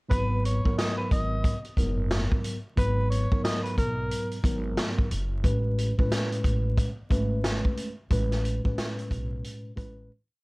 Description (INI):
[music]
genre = hip hop, boom-bap hip-hop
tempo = 90 BPM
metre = 4/4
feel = swing 62% on 16ths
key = G# phrygian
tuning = A4 = 440 Hz
[part]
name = breathy tenor saxophone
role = melody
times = 0.1-4.3 s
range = A#4 to D#5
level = -33 LUFS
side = equal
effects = tape echo
[part]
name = mellow tine electric piano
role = accompaniment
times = 0.1-10.1 s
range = G#2 to B4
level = -30 LUFS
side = equal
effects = medium stereo tremolo, cassette tape
[part]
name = upright bass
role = bass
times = 0.1-10.1 s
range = F#1 to B1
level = -29 LUFS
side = equal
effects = none
[part]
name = vintage drum kit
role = drums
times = 0.1-10.0 s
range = hi-hat, kick drum, snare drum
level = -27 LUFS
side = equal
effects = none
[sound]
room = light reverb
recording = worn, warbling old tape, cassette tape, vinyl crackle, warbly pitch drift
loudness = -24 LUFS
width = side -25 dB against mid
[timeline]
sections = 0.1-10.4 hook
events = fade-out 8.1-10.4; break 10.1-10.4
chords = 0.1 G#m9; 5.4 Amaj9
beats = | 0.11 0.78 1.44 2.11 | 2.77 3.44 4.11 4.78 | 5.44 6.11 6.78 7.44 | 8.11 8.78 9.44